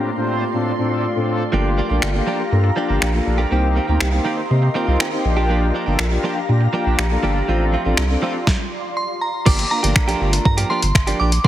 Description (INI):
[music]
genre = dance-pop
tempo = 121 BPM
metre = 4/4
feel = straight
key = G minor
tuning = A4 = 440 Hz
[part]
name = mellow synth brass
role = accompaniment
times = 0.0-11.5 s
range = A2 to C5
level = -23 LUFS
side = left 2 dB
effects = chorus, sidechain pumping
[part]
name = glassy FM pad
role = sustained chords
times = 0.0-8.5 s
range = A3 to C6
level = -26 LUFS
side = equal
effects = ensemble chorus, built-in reverb, sidechain pumping
[part]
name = direct-recorded clean electric guitar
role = riff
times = 1.5-11.5 s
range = Eb3 to G4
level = -24 LUFS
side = right 4 dB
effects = wide subtle chorus
[part]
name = saturated sub bass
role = bass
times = 1.5-11.5 s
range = G1 to C3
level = -18 LUFS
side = equal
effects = sidechain pumping
[part]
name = clean 12-bit digital drum machine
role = drums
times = 2.0-11.5 s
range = crash cymbal, finger snaps, hi-hat, kick drum, snare drum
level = -20 LUFS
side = equal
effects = none
[part]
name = glassy synth bell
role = melody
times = 9.0-11.5 s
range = Bb5 to D6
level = -22 LUFS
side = right 1 dB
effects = chorus, tape echo
[sound]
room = light reverb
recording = heavily compressed radio sound, multiband compression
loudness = -16 LUFS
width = side -12 dB against mid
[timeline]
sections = 0.0-9.5 A section; 9.5-11.5 B section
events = stop 8.5-9.5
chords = 0.0 Dm7/A; 1.5 Gm7; 3.5 Cm7; 5.2 Gm7; 7.5 Dm7/A; 8.5 N.C.; 9.5 Gm7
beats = 0.04 0.54 1.03 | 1.53 2.02 2.52 3.02 | 3.51 4.01 4.50 5.00 | 5.50 5.99 6.49 6.98 | 7.48 7.97 8.47 8.97 | 9.46 9.96 10.45 10.95 | 11.45